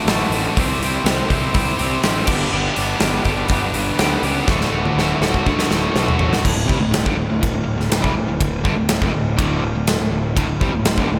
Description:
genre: classic rock.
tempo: 122 BPM.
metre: 4/4.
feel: straight.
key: D major.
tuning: A4 = 440 Hz.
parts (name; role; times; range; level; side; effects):
cranked stack guitar; riff; 0.0-11.2 s; D2 to C5; -23 LUFS; equal; overdrive, slapback echo.
fuzz picked electric bass; bass; 0.1-11.2 s; D1 to D2; -26 LUFS; equal; overdrive.
big rock drum kit; drums; 0.1-11.1 s; crash cymbal, hi-hat, kick drum, ride cymbal, snare drum, toms; -22 LUFS; equal; none.
room: moderate concert hall reverb, RT60 2.4 s.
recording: big arena sound.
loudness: -19 LUFS.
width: mono.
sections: 0.0-6.4 A section; 6.4-11.2 B section.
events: drum fill 4.5-6.4.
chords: 0.0 D; 0.6 C; 2.3 G; 4.5 D; 6.4 D5.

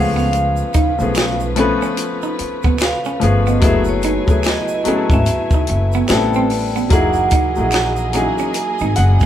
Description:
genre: R&B, neo-soul.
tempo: 73 BPM.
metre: 4/4.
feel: swing 60% on 16ths.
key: unclear.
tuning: A4 = 440 Hz.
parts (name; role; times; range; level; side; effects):
vibraphone with medium hard mallets; melody; 0.0-9.3 s; C#5 to G#5; -22 LUFS; right 2 dB; none.
clear concert grand piano; accompaniment; 0.0-9.3 s; E#3 to F#5; -19 LUFS; left 3 dB; none.
warm studio string section; sustained chords; 0.0-9.3 s; C3 to G#5; -29 LUFS; right 2 dB; none.
upright bass; bass; 0.0-9.3 s; F#1 to D#2; -19 LUFS; equal; none.
electric guitar at the edge of break-up; second line; 0.2-9.3 s; B3 to D#4; -24 LUFS; right 4 dB; none.
tube shaker and finger snaps; percussion; 0.2-9.3 s; none; -34 LUFS; right 4 dB; none.
compact cocktail drum kit; drums; 0.3-9.3 s; finger snaps, hi-hat, kick drum, snare drum; -18 LUFS; equal; none.
room: moderate large studio reverb, RT60 1.3 s.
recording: band playing live in one room.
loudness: -14 LUFS.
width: side -11 dB against mid.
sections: 0.0-9.3 A section.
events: none.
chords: 0.0 C#7b13; 3.6 F#m11; 6.1 Am9; 6.9 F#13.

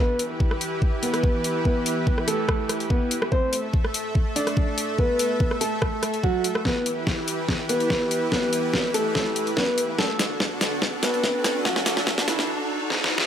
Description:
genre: heavy wobble dubstep.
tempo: 144 BPM.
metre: 4/4.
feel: half-time.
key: E minor.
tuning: A4 = 435 Hz.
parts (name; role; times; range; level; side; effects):
clear concert grand piano; melody; 0.0-12.5 s; E3 to D5; -26 LUFS; equal; digital delay.
supersaw pad; sustained chords; 0.0-13.3 s; D3 to E5; -29 LUFS; equal; sidechain pumping.
dubstep drum kit; drums; 0.2-13.3 s; hi-hat, rim click, snare drum; -25 LUFS; equal; overdrive.
electronic kick drum; drums; 0.4-12.2 s; none; -24 LUFS; equal; overdrive.
riser; sound effects; 8.9-13.3 s; none; -34 LUFS; equal; none.
room: moderate plate reverb, RT60 1.9 s.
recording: high-pass filter.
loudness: -21 LUFS.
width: side -9 dB against mid.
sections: 0.0-13.3 A section.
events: build-up 0.0-13.3; filter sweep 0.0-13.3; drum fill 6.7-12.5, 12.9-13.3; riser 8.9-13.3.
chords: 0.0 Em; 3.3 A5; 6.7 Em; 10.0 D.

